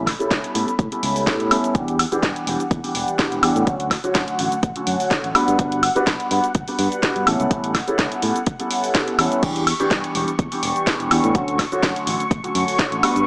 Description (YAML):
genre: filtered disco house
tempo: 125 BPM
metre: 4/4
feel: swing 54% on 16ths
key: unclear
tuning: A4 = 440 Hz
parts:
  - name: rich studio string section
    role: sustained chords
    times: 0.0-13.3 s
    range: F#5 to C#6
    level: -26 LUFS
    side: left 1 dB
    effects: sidechain pumping, low-pass filter
  - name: modern bright fingered electric bass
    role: bass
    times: 0.0-13.2 s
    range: E1 to A2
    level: -25 LUFS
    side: equal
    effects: sidechain pumping, low-pass filter
  - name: electronic kick drum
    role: drums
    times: 0.1-12.9 s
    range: none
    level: -22 LUFS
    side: equal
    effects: none
  - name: house drum kit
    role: drums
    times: 0.1-13.2 s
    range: crash cymbal, hi-hat, shaker, snare drum, woodblock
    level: -22 LUFS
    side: equal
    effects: sidechain pumping on hats, sidechain pumping on cymbals, sidechain pumping on perc
  - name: warm concert grand piano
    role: accompaniment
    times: 0.2-13.2 s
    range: D3 to B4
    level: -22 LUFS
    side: equal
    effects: phaser, sidechain pumping, low-pass filter
room: light reverb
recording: small speaker sound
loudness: -17 LUFS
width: side -29 dB against mid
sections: 0.0-13.3 A section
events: filter sweep 0.0-13.3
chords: 0.0 A9; 1.8 Em7; 3.7 Dmaj7; 5.3 Gmaj7; 7.3 A9; 9.4 Em7; 11.3 Dmaj7